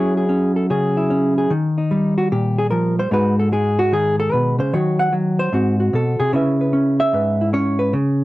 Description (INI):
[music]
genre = solo jazz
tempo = 150 BPM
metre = 4/4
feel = swing 67% on 8ths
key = C# minor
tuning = A4 = 440 Hz
[part]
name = hollow-body jazz guitar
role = solo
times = 0.0-8.2 s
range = G#2 to F#5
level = -16 LUFS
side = equal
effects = none
[sound]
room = moderate club reverb, RT60 0.7 s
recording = dark, warm production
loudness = -16 LUFS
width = side -17 dB against mid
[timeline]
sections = 0.0-8.2 A section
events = hollow-body jazz guitar solo 0.0-8.2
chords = 0.0 F#7sus2; 1.5 D#; 3.1 G#m7; 4.7 D#m; 5.5 G#7b9; 6.3 C#m7